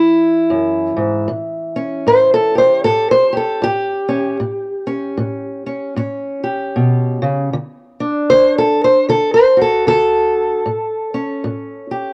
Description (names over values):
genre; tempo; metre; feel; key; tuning
acoustic country blues, solo or duo; 77 BPM; 4/4; swing 60% on 8ths; A mixolydian; A4 = 441 Hz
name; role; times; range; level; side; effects
fingerpicked steel-string acoustic guitar; solo; 0.0-12.1 s; E2 to C5; -16 LUFS; equal; cassette tape
room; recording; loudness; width
light reverb, small room ambience; home recording on cassette; -16 LUFS; mono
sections
0.0-1.3 A section; 1.3-12.1 B section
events
steel-string acoustic guitar solo 1.3-12.1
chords
0.0 E; 1.3 A7; 7.5 D; 10.7 A7